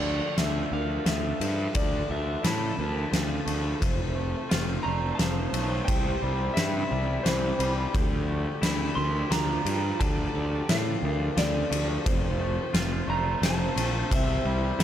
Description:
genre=post-rock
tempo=87 BPM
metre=3/4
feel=straight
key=D minor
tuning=A4 = 440 Hz
part: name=electric guitar through a small old amp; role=melody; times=0.0-14.8 s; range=C5 to C6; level=-33 LUFS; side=right 1 dB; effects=tape echo
part: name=sweeping resonant pad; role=sustained chords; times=0.0-14.8 s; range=F3 to A5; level=-38 LUFS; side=equal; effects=chorus
part: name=twangy electric guitar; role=arpeggios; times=0.0-14.8 s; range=F2 to F4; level=-36 LUFS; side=left 3 dB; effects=tape echo
part: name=vibraphone with medium mallets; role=arpeggios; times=0.0-14.8 s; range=F4 to D5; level=-38 LUFS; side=right 5 dB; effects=tape echo
part: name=fuzz picked electric bass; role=bass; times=0.0-14.8 s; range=F1 to A2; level=-29 LUFS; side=equal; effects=overdrive
part: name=oversized low-tuned drum kit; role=drums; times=0.4-14.8 s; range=kick drum, ride cymbal, snare drum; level=-28 LUFS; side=equal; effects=none
room=small room ambience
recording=none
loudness=-24 LUFS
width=side -10 dB against mid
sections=0.0-14.8 A section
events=none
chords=0.0 Dmadd9; 3.8 F; 5.9 C; 8.0 Dmadd9; 12.1 F; 14.1 C

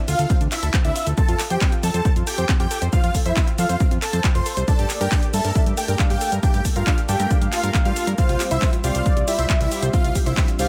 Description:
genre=uplifting trance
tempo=137 BPM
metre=4/4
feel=straight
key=unclear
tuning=A4 = 440 Hz
part: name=supersaw chords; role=melody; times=0.1-10.7 s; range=E4 to C6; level=-29 LUFS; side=equal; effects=phaser, sidechain pumping, delay
part: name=warm concert grand piano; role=second line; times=0.1-10.7 s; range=E5 to C6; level=-36 LUFS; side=equal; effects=none
part: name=analog pluck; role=arpeggios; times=0.1-10.7 s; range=C4 to C5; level=-33 LUFS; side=equal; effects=chorus, sidechain pumping, tape echo
part: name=fat analog bass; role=bass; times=0.1-10.7 s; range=F1 to G2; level=-25 LUFS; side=equal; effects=sidechain pumping
part: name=big-room dance drum kit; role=drums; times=0.1-10.7 s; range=handclaps, hi-hat, shaker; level=-30 LUFS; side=equal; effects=overdrive, sidechain pumping on hats, sidechain pumping on cymbals, sidechain pumping on perc
part: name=electronic kick drum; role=drums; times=0.3-10.5 s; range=none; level=-22 LUFS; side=equal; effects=none
part: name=warm velvety synth lead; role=second line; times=4.7-10.7 s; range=C5 to F5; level=-33 LUFS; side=equal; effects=chorus, dub echo
part: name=analog string pad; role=sustained chords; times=4.7-10.7 s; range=G3 to G4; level=-35 LUFS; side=equal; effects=none
room=little or no reverb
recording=none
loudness=-20 LUFS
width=mono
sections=0.0-10.7 A section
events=none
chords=0.0 Dm7; 1.2 F; 4.7 Gmadd9; 8.2 Csus4

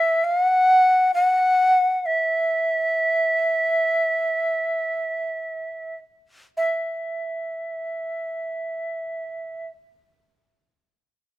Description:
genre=japanese traditional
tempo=free time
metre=none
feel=none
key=unclear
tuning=A4 = 440 Hz
part: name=bright shakuhachi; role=melody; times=0.0-9.7 s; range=E5 to F#5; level=-20 LUFS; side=equal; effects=none
room=light reverb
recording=close, detailed microphones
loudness=-19 LUFS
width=side -16 dB against mid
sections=0.0-6.6 A section; 6.6-11.4 B section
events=slowing down 0.0-6.6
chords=none

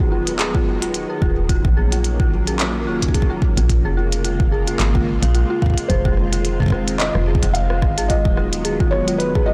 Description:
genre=IDM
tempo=109 BPM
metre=4/4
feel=swing 56% on 16ths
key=unclear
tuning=A4 = 439 Hz
part: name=soft string machine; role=sustained chords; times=0.0-9.5 s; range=Db3 to F4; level=-28 LUFS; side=equal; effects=phaser, ensemble chorus, sidechain pumping
part: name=woody FM bass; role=bass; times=0.0-9.5 s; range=Eb1 to Bb1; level=-24 LUFS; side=equal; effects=tube saturation
part: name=electronic kick drum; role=drums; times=0.0-9.4 s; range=none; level=-21 LUFS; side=equal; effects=studio reverb
part: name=dark detuned synth bell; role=arpeggios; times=0.1-9.5 s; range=F4 to F5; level=-28 LUFS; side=equal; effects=chorus, phaser, tape echo
part: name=glitchy drum kit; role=drums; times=0.3-9.3 s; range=handclaps, hi-hat, rim click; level=-27 LUFS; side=equal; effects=studio reverb
part: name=felt-muted upright piano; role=melody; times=5.9-9.5 s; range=Cb5 to F5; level=-26 LUFS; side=equal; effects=tape echo
room=light reverb, digital ambience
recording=blown-out, overdriven recording, overdrive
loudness=-18 LUFS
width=mono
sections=0.0-9.5 A section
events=none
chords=0.0 Abm7; 1.5 Ebm7; 3.7 Bbm7; 5.9 Fm7; 7.8 Abm7

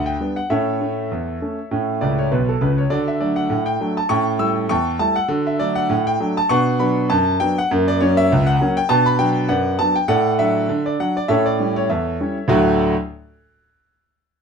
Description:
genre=ragtime piano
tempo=100 BPM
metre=2/4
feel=swing 55% on 16ths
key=D major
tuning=A4 = 441 Hz
part: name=clear concert grand piano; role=solo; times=0.0-12.9 s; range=B1 to E6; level=-16 LUFS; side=equal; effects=none
room=moderate studio reverb, RT60 0.5 s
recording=minimal, uncompressed stereo recording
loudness=-16 LUFS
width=side -6 dB against mid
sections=0.0-12.5 A section; 12.5-13.7 B section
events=grand piano fill 2.0-2.9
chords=0.5 A; 2.9 D; 4.1 A7; 5.3 D; 6.5 Bm; 7.7 F#; 8.9 Bm; 10.1 D/A; 11.3 A7; 12.5 D

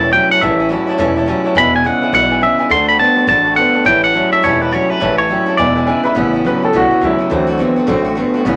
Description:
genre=rock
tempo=209 BPM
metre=4/4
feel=swing 62% on 8ths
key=A mixolydian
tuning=A4 = 440 Hz
part: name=twangy electric guitar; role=melody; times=0.0-6.0 s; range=B4 to C6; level=-15 LUFS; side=equal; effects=none
part: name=clear upright piano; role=accompaniment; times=0.0-8.6 s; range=C#3 to B5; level=-20 LUFS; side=equal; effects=none
part: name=picked old ladder-braced acoustic guitar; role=accompaniment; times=0.0-8.6 s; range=E2 to F#4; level=-24 LUFS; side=equal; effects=none
part: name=electric guitar through a small old amp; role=riff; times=0.0-8.6 s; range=E2 to B3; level=-20 LUFS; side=equal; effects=none
part: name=upright bass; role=bass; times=0.0-8.6 s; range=E1 to D2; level=-26 LUFS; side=equal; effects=none
room=moderate studio ambience, RT60 0.5 s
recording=none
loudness=-14 LUFS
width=mono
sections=0.0-6.2 A section; 6.2-8.6 B section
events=upright piano solo 6.2-8.6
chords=0.0 A7; 1.6 E7; 2.7 D7; 3.9 A7; 5.6 E7; 6.2 A7; 7.3 D7

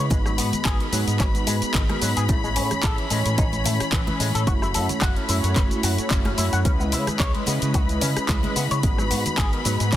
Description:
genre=nu-disco, nu disco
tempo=110 BPM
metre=4/4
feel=swing 55% on 16ths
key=C# minor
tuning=A4 = 440 Hz
part: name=mellow synth brass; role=accompaniment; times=0.0-10.0 s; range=E3 to G#5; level=-28 LUFS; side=right 1 dB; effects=chorus, vintage 12-bit sampler grit, tape echo
part: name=warm symphonic string section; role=sustained chords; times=0.0-10.0 s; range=B5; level=-30 LUFS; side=left 3 dB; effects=sidechain pumping
part: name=electric guitar with an envelope filter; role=riff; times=0.0-10.0 s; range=D#3 to F#5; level=-30 LUFS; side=left 3 dB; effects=lush chorus, tape echo
part: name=fingered electric bass with an envelope filter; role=bass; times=0.0-10.0 s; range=F#1 to C#3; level=-25 LUFS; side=equal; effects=sidechain pumping
part: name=electronic kick drum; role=drums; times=0.1-10.0 s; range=none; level=-23 LUFS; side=equal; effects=overdrive
part: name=house drum kit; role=drums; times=0.1-10.0 s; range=handclaps, hi-hat, rim click, shaker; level=-27 LUFS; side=left 1 dB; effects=overdrive
part: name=congas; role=percussion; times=0.1-9.8 s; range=none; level=-35 LUFS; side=right 2 dB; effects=none
room=light reverb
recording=dense, heavily limited modern master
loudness=-20 LUFS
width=side -12 dB against mid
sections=0.0-10.0 A section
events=none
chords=0.1 G#m7; 2.3 Amaj7; 4.5 F#m7; 6.7 C#m9; 8.8 G#m7

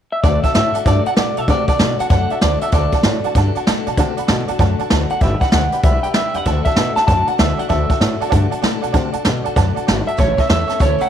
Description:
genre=rockabilly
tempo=193 BPM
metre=4/4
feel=swing 64% on 8ths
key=D major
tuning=A4 = 440 Hz
part: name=electric guitar through a small old amp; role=melody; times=0.1-11.1 s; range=C#5 to A5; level=-19 LUFS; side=equal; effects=spring reverb, tape echo
part: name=picked steel-string acoustic guitar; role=accompaniment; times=0.2-11.1 s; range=A2 to B4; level=-25 LUFS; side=left 14 dB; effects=none
part: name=tack piano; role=accompaniment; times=0.2-11.1 s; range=C#5 to B5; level=-24 LUFS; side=right 12 dB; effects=none
part: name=upright bass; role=bass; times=0.2-11.0 s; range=G1 to C3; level=-19 LUFS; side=equal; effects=none
part: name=jazz brush drum kit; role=drums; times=0.2-11.1 s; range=hi-hat, kick drum, snare drum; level=-18 LUFS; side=equal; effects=none
room=light reverb, small room ambience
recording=1960s-style stereo with parts hard left and right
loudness=-14 LUFS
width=side -9 dB against mid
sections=0.2-11.1 A section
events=none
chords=0.2 D; 5.2 G; 6.5 D; 10.2 A

